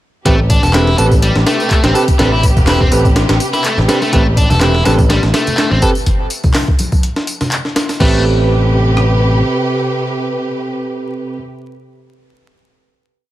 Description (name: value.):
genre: breakbeat, breaks.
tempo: 124 BPM.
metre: 4/4.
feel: swing 55% on 16ths.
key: A minor.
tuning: A4 = 439 Hz.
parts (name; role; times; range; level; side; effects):
warm studio string section; sustained chords; 0.3-11.4 s; C3 to B4; -21 LUFS; equal; sidechain pumping.
biting overdriven guitar; riff; 0.3-8.2 s; G3 to A4; -18 LUFS; left 1 dB; tube saturation, dub echo.
overdriven tine electric piano; stabs; 0.3-11.4 s; C4 to B4; -19 LUFS; right 3 dB; dub echo.
modern bright picked electric bass; bass; 0.3-9.4 s; E1 to A1; -13 LUFS; equal; none.
breakbeat sampler-style drum kit; drums; 0.3-9.1 s; crash cymbal, hi-hat, kick drum, rim click, snare drum; -14 LUFS; equal; none.
electronic tambourine and handclaps; drums; 0.3-8.0 s; none; -24 LUFS; left 1 dB; overdrive.
congas; percussion; 4.5-7.5 s; none; -23 LUFS; equal; none.
room: little or no reverb.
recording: vinyl crackle.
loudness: -11 LUFS.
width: side -14 dB against mid.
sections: 0.3-8.0 drop; 8.0-11.9 final chord.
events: drop 0.3-8.0.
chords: 0.3 Am9.